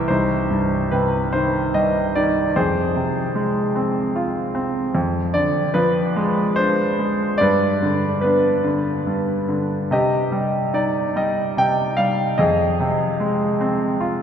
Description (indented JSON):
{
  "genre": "classical, lyrical solo piano",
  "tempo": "73 BPM",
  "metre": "3/4",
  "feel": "rubato",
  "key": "C harmonic minor",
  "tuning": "A4 = 440 Hz",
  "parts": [
    { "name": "bright concert grand piano", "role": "solo", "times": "0.0-14.2 s", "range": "C2 to G5", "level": "-18 LUFS", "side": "equal", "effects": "none" }
  ],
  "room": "wet cathedral reverb, RT60 6.6 s",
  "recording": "recorded in a church or concert hall",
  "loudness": "-18 LUFS",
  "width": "side -8 dB against mid",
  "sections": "0.1-14.2 A section",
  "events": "none",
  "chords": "0.1 Cm; 2.6 Fm; 4.9 Ddim/F; 7.4 G; 9.9 Cm; 12.4 Fm",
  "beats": "| 0.09 0.92 1.74 | 2.56 3.35 4.15 | 4.95 5.75 6.57 | 7.40 8.23 9.06 | 9.91 10.74 11.56 | 12.39 13.20 14.00"
}